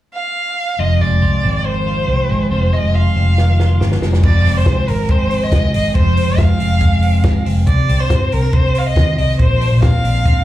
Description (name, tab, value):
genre	jangly indie pop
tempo	140 BPM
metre	4/4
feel	straight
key	F dorian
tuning	A4 = 440 Hz
part	rich violin	melody	0.1-10.4 s	Bb4 to F5	-20 LUFS	right 1 dB	plate reverb, slapback echo, ping-pong delay
part	twelve-string electric guitar	arpeggios	0.8-10.4 s	F2 to F4	-20 LUFS	left 1 dB	none
part	vintage muted fingered electric bass	bass	0.8-10.4 s	F1 to G2	-15 LUFS	equal	none
part	compact cocktail drum kit	drums	3.4-10.4 s	crash cymbal, hi-hat, kick drum, snare drum	-16 LUFS	equal	none
room	little or no reverb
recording	live gig heard through the venue's PA, club reverb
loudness	-12 LUFS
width	side -14 dB against mid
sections	0.8-4.2 A section; 4.2-10.4 B section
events	drum fill 3.4-4.2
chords	0.0 N.C.; 0.8 Fm7; 7.7 Cmadd9; 9.4 Bbadd9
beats	0.35 | 0.79 1.22 1.65 2.08 | 2.51 2.94 3.38 3.81 | 4.24 4.67 5.10 5.53 | 5.96 6.39 6.82 7.25 | 7.68 8.11 8.54 8.97 | 9.40 9.83 10.26